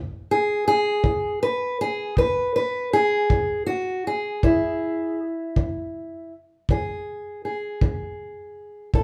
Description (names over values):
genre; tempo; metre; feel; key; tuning
acoustic country blues, solo or duo; 53 BPM (dotted quarters); 12/8; straight; unclear; A4 = 440 Hz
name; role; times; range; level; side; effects
fingerpicked steel-string acoustic guitar; melody; 0.0-9.0 s; A2 to B4; -25 LUFS; equal; none
kick drum; drums; 1.0-9.0 s; none; -26 LUFS; equal; none
room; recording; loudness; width
moderate studio reverb, RT60 0.6 s; band playing live in one room; -24 LUFS; mono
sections
0.0-9.0 A section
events
none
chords
0.0 E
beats
1.04 2.17 3.30 | 4.43 5.55 6.68 7.81 | 8.94